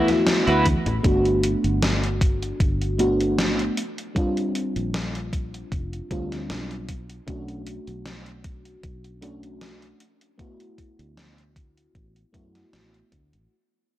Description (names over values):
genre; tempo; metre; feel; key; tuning
vaporwave; 77 BPM; 4/4; swing 54% on 16ths; unclear; A4 = 440 Hz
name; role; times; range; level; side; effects
mellow FM electric piano; accompaniment; 0.0-13.5 s; G3 to F#4; -25 LUFS; equal; analog chorus, analog delay
clean electric guitar; riff; 0.0-0.9 s; E4 to B4; -25 LUFS; right 2 dB; analog chorus, analog delay
gated 80s digital drum machine; drums; 0.1-13.5 s; congas, hi-hat, snare drum; -27 LUFS; equal; gated reverb, gated reverb snare
fingered electric bass; bass; 0.5-13.5 s; F1 to F#2; -28 LUFS; equal; tube saturation
electronic kick drum; drums; 0.7-13.3 s; none; -24 LUFS; equal; none
room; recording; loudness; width
light reverb, digital ambience; dry, gritty hardware recording; -21 LUFS; side -14 dB against mid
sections
0.0-13.5 A section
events
fade-out 0.0-13.5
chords
0.0 D69; 1.0 Gmaj9; 3.8 Bb69; 6.9 Bm9; 10.0 D69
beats
0.26 | 1.04 1.82 2.60 3.38 | 4.16 4.94 5.72 6.50 | 7.28 8.05 8.84 9.61 | 10.39 11.17 11.95 12.73